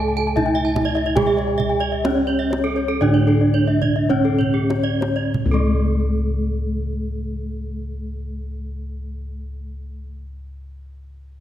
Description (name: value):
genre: Balinese gamelan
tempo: 46-82 BPM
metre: 4/4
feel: straight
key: unclear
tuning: A4 = 435 Hz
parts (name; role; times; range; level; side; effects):
- gamelan-type bronze metallophone; melody; 0.0-10.2 s; A3-20c to A4-20c; -22 LUFS; right 1 dB; none
- gamelan-type bronze metallophone; accompaniment; 0.0-10.2 s; D3+20c to A3-20c; -29 LUFS; right 3 dB; none
- gamelan-type bronze metallophone; arpeggios; 0.0-10.1 s; G#4-30c to A5-20c; -29 LUFS; right 6 dB; none
- gamelan-type bossed gongs; bass; 0.0-10.1 s; C#2 to G#4-30c; -24 LUFS; left 1 dB; none
- gamelan-type bronze metallophone; arpeggios; 0.1-10.2 s; A4-20c to A5-20c; -27 LUFS; left 5 dB; none
- kendang; percussion; 0.2-6.0 s; none; -27 LUFS; right 3 dB; none
room: moderate concert hall reverb, RT60 1.9 s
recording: none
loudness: -17 LUFS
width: side -11 dB against mid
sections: 0.0-5.3 A section; 5.3-10.6 B section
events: slowing down 0.0-5.3; drum fill 3.8-5.3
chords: none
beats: 0.37 | 1.17 2.04 3.01 4.10 | 5.33 6.64 7.96 9.27